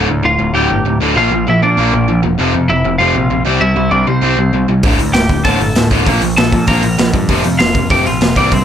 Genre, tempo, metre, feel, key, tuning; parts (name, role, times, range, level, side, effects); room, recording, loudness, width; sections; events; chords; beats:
punk rock; 195 BPM; 4/4; straight; A4 = 436 Hz
crunchy overdriven guitar; riff; 0.0-8.6 s; D2 to C4; -18 LUFS; right 12 dB
distorted electric guitar; riff; 0.0-8.6 s; D2 to C4; -17 LUFS; left 9 dB; distortion
growling picked electric bass; bass; 0.0-8.6 s; D1 to Bb2; -17 LUFS; equal; overdrive
lightly driven lead guitar; melody; 0.2-8.6 s; C4 to Bb5; -15 LUFS; equal
raw garage drum kit; drums; 4.8-8.6 s; hi-hat, kick drum, snare drum; -14 LUFS; equal
light reverb; -10 LUFS; side -9 dB against mid
0.0-8.6 A section
0.0 Dm; 1.2 Bb; 2.4 F5; 3.5 C; 4.8 D5; 6.1 Bb5; 7.3 F5
0.24 0.55 0.85 | 1.16 1.46 1.77 2.08 | 2.38 2.69 3.00 3.30 | 3.61 3.92 4.22 4.53 | 4.84 5.15 5.45 5.76 | 6.07 6.38 6.68 6.99 | 7.30 7.60 7.91 8.22 | 8.53